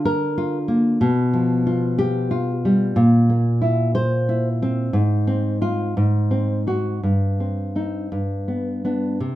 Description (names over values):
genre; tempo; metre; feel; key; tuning
romantic piece for solo classical guitar; 54-64 BPM (dotted quarters); 6/8; rubato; unclear; A4 = 442 Hz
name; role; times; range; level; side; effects
nylon-string guitar; solo; 0.0-9.4 s; G2 to C5; -18 LUFS; equal; none
room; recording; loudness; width
wet studio reverb, RT60 0.6 s; rough home demo mix; -18 LUFS; side -14 dB against mid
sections
0.0-9.2 A section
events
none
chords
0.0 Bb/D; 1.0 G7/B; 3.0 C7/Bb; 4.9 Fm/Ab; 6.0 Ab7; 7.0 Cm/G; 8.1 G